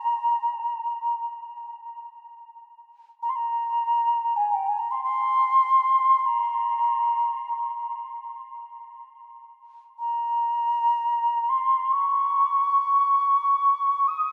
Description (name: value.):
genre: world meditative, free-time meditation music.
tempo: free time.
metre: none.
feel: none.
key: Bb minor.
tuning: A4 = 440 Hz.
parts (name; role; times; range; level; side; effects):
mellow alto ocarina; solo; 0.0-14.3 s; G5 to Eb6; -24 LUFS; equal; delay.
room: wet huge ambient reverb, RT60 7.1 s.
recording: dark, warm production.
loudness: -23 LUFS.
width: mono.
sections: 0.0-14.3 A section.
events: none.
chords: none.